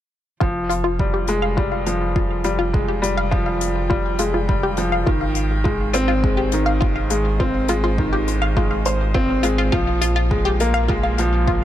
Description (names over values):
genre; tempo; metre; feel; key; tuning
piano and strings electronica; 103 BPM; 4/4; straight; F minor; A4 = 441 Hz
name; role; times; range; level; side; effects
warm string quartet; sustained chords; 0.4-11.6 s; F3 to G5; -36 LUFS; right 2 dB; none
wide unison pluck; arpeggios; 0.4-11.6 s; F4 to F5; -25 LUFS; left 2 dB; sidechain pumping, ping-pong delay, shimmer reverb
bright upright piano; riff; 0.4-11.6 s; Eb3 to C5; -21 LUFS; left 1 dB; low-pass filter, ping-pong delay, shimmer reverb
warm sub bass; bass; 0.4-11.6 s; F1 to Bb1; -23 LUFS; equal; sidechain pumping
electronic kick drum; drums; 0.4-11.6 s; none; -22 LUFS; equal; none
hi-hat; drums; 0.7-11.3 s; none; -30 LUFS; left 6 dB; none
room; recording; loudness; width
light reverb, small room ambience; dark, warm production; -17 LUFS; side -12 dB against mid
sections
0.4-11.6 A section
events
none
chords
0.4 Fmadd9; 5.1 Ab; 9.7 Bb7(no3)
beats
| 0.41 1.00 1.58 2.16 | 2.74 3.33 3.91 4.49 | 5.07 5.66 6.24 6.82 | 7.40 7.99 8.57 9.15 | 9.73 10.32 10.90 11.48